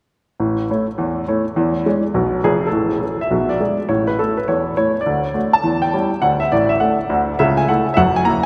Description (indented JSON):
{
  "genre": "jazz, stride piano",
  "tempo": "206 BPM",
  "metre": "4/4",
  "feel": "swing 64% on 8ths",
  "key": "A major",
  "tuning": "A4 = 440 Hz",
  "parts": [
    { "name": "clear grand piano", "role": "solo", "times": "0.4-8.5 s", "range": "F1 to A#5", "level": "-18 LUFS", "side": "equal", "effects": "none" }
  ],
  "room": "wet cathedral reverb, RT60 4.7 s",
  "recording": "recorded in a church or concert hall",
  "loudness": "-18 LUFS",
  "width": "mono",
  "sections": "0.4-2.7 A section; 2.7-8.5 B section",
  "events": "none",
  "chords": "0.4 A; 1.6 E6; 2.7 A; 3.3 G#dim/B; 3.9 A; 5.1 D; 5.6 C#dim/E; 6.2 D; 7.4 A/C#"
}